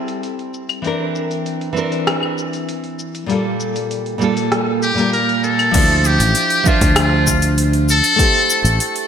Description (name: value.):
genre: sunset chillout.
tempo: 98 BPM.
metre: 4/4.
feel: straight.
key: unclear.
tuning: A4 = 439 Hz.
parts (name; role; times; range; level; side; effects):
nylon-string guitar; accompaniment; 0.0-9.1 s; Bb2 to E5; -19 LUFS; moving between left 3 dB and right 3 dB; auto-pan, low-pass filter, digital delay.
smooth R&B drum kit; drums; 0.1-9.1 s; claves, crash cymbal, hi-hat, rim click, shaker; -22 LUFS; left 1 dB; low-pass filter on perc, low-pass filter on hats, low-pass filter on snare, low-pass filter on cymbals, low-pass filter on room, gated reverb.
trumpet with metal mute; melody; 4.8-9.1 s; F4 to Bb4; -16 LUFS; left 1 dB; digital delay.
sustaining fretless electric bass; bass; 5.7-8.8 s; A1 to D2; -16 LUFS; equal; none.
electronic kick drum; drums; 5.7-8.3 s; none; -17 LUFS; equal; none.
room: wet lush hall reverb, RT60 2.0 s.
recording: bright 1980s-style digital production.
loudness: -14 LUFS.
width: side -8 dB against mid.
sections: 0.0-5.7 A section; 5.7-9.1 B section.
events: filter sweep on nylon-string guitar 0.0-5.7.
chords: 0.0 Am7; 0.8 C9; 3.3 Gm9/Bb; 5.7 Dm9; 8.2 Am7.